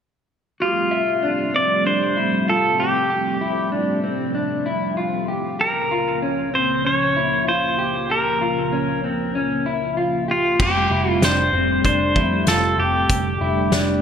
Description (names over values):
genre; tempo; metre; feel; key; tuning
dream pop; 96 BPM; 4/4; straight; F major; A4 = 440 Hz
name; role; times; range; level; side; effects
pedal steel guitar; melody; 0.6-14.0 s; F4 to D5; -20 LUFS; right 1 dB; digital delay
string machine, cellos; sustained chords; 0.6-14.0 s; Db3 to G4; -25 LUFS; right 1 dB; phaser, ensemble chorus
mellow electric guitar; arpeggios; 0.6-14.0 s; C4 to E5; -24 LUFS; left 2 dB; lush chorus, digital delay
vintage muted picked electric bass; bass; 10.6-14.0 s; F1 to F2; -24 LUFS; equal; none
loose indie drum kit; drums; 10.6-13.9 s; crash cymbal, hi-hat, kick drum, snare drum; -22 LUFS; equal; none
room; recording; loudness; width
wet plate reverb, RT60 2.0 s; bright 1980s-style digital production; -18 LUFS; side -7 dB against mid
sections
0.6-10.6 A section; 10.6-14.0 B section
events
none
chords
0.6 Fadd9; 5.6 Bbm; 10.6 Fadd9